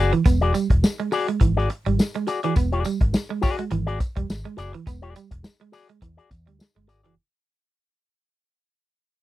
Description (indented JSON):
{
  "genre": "funk",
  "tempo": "104 BPM",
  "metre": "4/4",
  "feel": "swing 56% on 16ths",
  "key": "E mixolydian",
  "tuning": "A4 = 440 Hz",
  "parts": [
    { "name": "electric guitar with an envelope filter", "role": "accompaniment", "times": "0.0-7.1 s", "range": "F#4 to D5", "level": "-26 LUFS", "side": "left 5 dB", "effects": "none" },
    { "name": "vintage muted fingered electric bass", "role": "bass", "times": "0.0-7.2 s", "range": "E1 to E2", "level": "-24 LUFS", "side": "equal", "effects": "none" },
    { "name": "electric guitar at the edge of break-up", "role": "riff", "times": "0.1-7.2 s", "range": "E3 to B3", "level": "-26 LUFS", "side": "right 7 dB", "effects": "none" },
    { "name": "warm soul drum kit", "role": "drums", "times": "0.1-7.2 s", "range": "hi-hat, kick drum, snare drum", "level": "-20 LUFS", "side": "equal", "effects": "none" },
    { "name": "tambourine", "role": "percussion", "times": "0.3-7.0 s", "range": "none", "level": "-41 LUFS", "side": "left 4 dB", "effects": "none" }
  ],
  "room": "little or no reverb",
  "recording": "dry, close 1970s-style studio recording",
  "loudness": "-20 LUFS",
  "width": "side -15 dB against mid",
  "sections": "0.0-7.2 A section",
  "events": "fade-out 0.0-7.2",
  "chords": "0.0 E9"
}